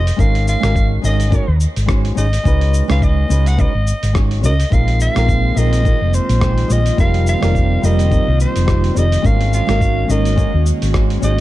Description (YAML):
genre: sunset chillout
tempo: 106 BPM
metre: 4/4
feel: swing 57% on 16ths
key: unclear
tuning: A4 = 436 Hz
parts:
  - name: growling soprano saxophone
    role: melody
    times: 0.0-11.4 s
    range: C5 to Gb5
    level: -22 LUFS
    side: equal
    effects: vintage 12-bit sampler grit, digital delay
  - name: hollow-body short-scale fingered electric bass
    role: bass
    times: 0.0-11.4 s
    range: F1 to Eb2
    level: -15 LUFS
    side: equal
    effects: none
  - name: dusty soul sampler-style drum kit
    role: drums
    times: 0.1-11.4 s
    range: cabasa, hi-hat, rim click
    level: -27 LUFS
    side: equal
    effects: none
  - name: nylon-string guitar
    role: accompaniment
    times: 0.2-11.3 s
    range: G3 to Db5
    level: -22 LUFS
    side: equal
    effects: auto-pan
  - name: electronic kick drum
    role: drums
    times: 0.2-11.1 s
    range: none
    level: -16 LUFS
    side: equal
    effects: none
  - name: airy breathy pad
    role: sustained chords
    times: 4.7-11.4 s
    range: Eb3 to Gb4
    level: -23 LUFS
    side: right 1 dB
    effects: chorus
room: little or no reverb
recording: dark, warm production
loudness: -13 LUFS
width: side -16 dB against mid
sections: 0.0-11.4 A section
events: none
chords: 0.2 Ab9sus4; 2.5 Db9sus4; 4.7 Bb9sus4; 7.0 F9sus4; 9.2 Ab9sus4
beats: | 0.19 0.76 1.32 1.89 | 2.46 3.02 3.59 4.15 | 4.72 5.29 5.85 6.42 | 6.98 7.55 8.12 8.68 | 9.25 9.81 10.38 10.95